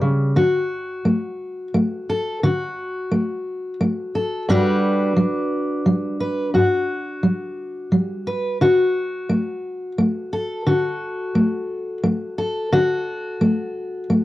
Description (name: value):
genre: folk, solo fingerstyle acoustic guitar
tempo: 87 BPM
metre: 3/4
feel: straight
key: unclear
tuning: A4 = 439 Hz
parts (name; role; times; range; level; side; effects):
- fingerpicked steel-string acoustic guitar; solo; 0.0-14.2 s; G2 to B4; -19 LUFS; equal; cassette tape
room: moderate studio reverb, RT60 0.6 s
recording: home recording on cassette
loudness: -19 LUFS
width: side -16 dB against mid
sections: 0.4-14.2 A section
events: none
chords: 0.4 D; 4.5 Gmaj7; 8.6 D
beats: | 0.36 1.05 1.74 | 2.43 3.12 3.80 | 4.49 5.17 5.86 | 6.54 7.23 7.92 | 8.61 9.30 9.99 | 10.68 11.36 12.05 | 12.73 13.41 14.10